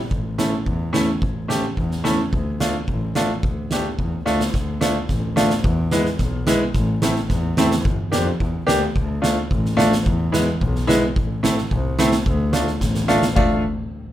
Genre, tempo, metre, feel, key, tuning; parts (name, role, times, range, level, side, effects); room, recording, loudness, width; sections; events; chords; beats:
klezmer; 109 BPM; 2/4; straight; D minor; A4 = 440 Hz
bright double bass; bass; 0.1-13.6 s; G1 to F2; -24 LUFS; left 1 dB
oversized low-tuned drum kit; drums; 0.1-13.5 s; kick drum, snare drum, splash cymbal, toms; -23 LUFS; right 1 dB
bright upright piano; accompaniment; 0.4-13.6 s; G#3 to G4; -20 LUFS; equal
light reverb; minimal, uncompressed stereo recording; -18 LUFS; side -12 dB against mid
0.0-4.5 A section; 4.5-13.4 B section
drum fill 4.3, 12.8-13.4
0.1 A; 2.3 Dm; 5.6 E; 6.7 Am; 7.8 Gm; 9.0 Dm; 10.1 E; 11.2 Am; 12.3 Dm
| 0.11 0.66 | 1.22 1.77 | 2.33 2.88 | 3.43 3.99 | 4.54 5.09 | 5.64 6.19 | 6.75 7.30 | 7.85 8.40 | 8.95 9.50 | 10.05 10.61 | 11.16 11.71 | 12.26 12.81 | 13.37